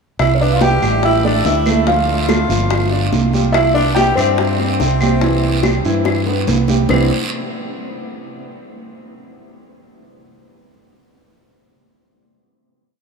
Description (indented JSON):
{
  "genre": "Afro-Cuban jazz",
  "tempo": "143 BPM",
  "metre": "4/4",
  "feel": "straight",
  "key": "C major",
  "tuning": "A4 = 440 Hz",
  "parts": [
    { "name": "felt-muted upright piano", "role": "melody", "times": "0.2-7.1 s", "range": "C5 to G5", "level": "-20 LUFS", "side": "right 2 dB", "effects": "none" },
    { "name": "growling tenor saxophone", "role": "second line", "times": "0.2-7.1 s", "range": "C4 to G4", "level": "-22 LUFS", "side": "left 4 dB", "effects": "none" },
    { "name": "fingered electric bass", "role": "bass", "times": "0.2-7.1 s", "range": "G1 to G2", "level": "-18 LUFS", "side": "right 1 dB", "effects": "none" },
    { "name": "bongos", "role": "percussion", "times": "0.2-7.0 s", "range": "none", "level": "-24 LUFS", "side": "left 9 dB", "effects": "none" },
    { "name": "claves", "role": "percussion", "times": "0.2-7.0 s", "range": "none", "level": "-30 LUFS", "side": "left 5 dB", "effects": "none" },
    { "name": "congas", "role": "percussion", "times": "0.2-7.0 s", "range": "none", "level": "-24 LUFS", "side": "right 2 dB", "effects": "none" },
    { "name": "guiro", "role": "percussion", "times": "0.2-7.0 s", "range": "none", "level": "-28 LUFS", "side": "right 6 dB", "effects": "none" },
    { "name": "warm grand piano", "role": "accompaniment", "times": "0.4-7.1 s", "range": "C3 to D5", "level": "-22 LUFS", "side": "right 4 dB", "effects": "none" }
  ],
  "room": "wet cathedral reverb, RT60 6.5 s",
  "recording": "in a vast, echoing space",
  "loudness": "-13 LUFS",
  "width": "side -5 dB against mid",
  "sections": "0.2-6.9 A section; 6.9-8.6 final chord",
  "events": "drum fill 6.1-6.9",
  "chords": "0.2 C5; 1.0 A5; 1.9 Dm; 2.7 G5; 3.5 Cmaj7; 6.9 Cmaj9",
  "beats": "| 0.20 0.62 1.04 1.46 | 1.87 2.29 2.71 3.13 | 3.55 3.97 4.39 4.81 | 5.23 5.64 6.06 6.48 | 6.90"
}